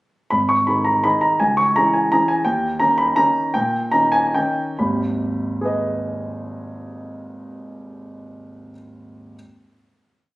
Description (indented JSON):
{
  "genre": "classical, piano waltz",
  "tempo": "129-175 BPM",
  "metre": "3/4",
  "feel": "rubato",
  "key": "G# minor",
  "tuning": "A4 = 441 Hz",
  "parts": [
    { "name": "warm baby grand piano", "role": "solo", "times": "0.3-9.4 s", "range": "G#1 to C#6", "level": "-18 LUFS", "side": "equal", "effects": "none" }
  ],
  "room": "moderate recital hall reverb, RT60 1.5 s",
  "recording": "recorded on a phone in the room, studio ambience",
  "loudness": "-16 LUFS",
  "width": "side -19 dB against mid",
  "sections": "0.3-4.8 A section; 4.8-7.2 final chord",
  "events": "slowing down 1.9-4.8",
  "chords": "0.3 G#5; 1.4 C#m; 2.5 D#7; 4.8 G#m"
}